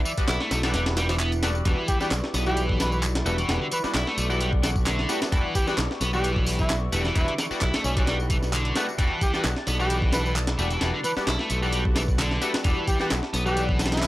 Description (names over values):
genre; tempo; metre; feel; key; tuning
breakbeat, breaks; 131 BPM; 4/4; swing 54% on 16ths; unclear; A4 = 440 Hz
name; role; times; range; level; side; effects
phased analog pad; sustained chords; 0.0-14.1 s; E4 to D6; -36 LUFS; right 1 dB; phaser, chorus, sidechain pumping
biting overdriven guitar; riff; 0.1-14.0 s; D3 to E4; -29 LUFS; equal; vintage 12-bit sampler grit
electronic tambourine and handclaps; drums; 0.1-14.1 s; none; -34 LUFS; equal; none
band-passed chord stab; stabs; 0.2-14.1 s; G3 to F#4; -32 LUFS; left 2 dB; chorus, phaser, analog delay
modern bright picked electric bass; bass; 0.2-14.1 s; E1 to B1; -27 LUFS; equal; none
breakbeat sampler-style drum kit; drums; 0.2-14.1 s; hi-hat, kick drum, snare drum; -26 LUFS; equal; none
trumpet with bucket mute; melody; 1.9-14.1 s; C#4 to B4; -31 LUFS; equal; small speaker sound, analog delay
room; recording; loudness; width
light reverb; dry, gritty hardware recording, transformer saturation; -22 LUFS; side -16 dB against mid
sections
0.0-14.1 A section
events
none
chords
0.0 Em7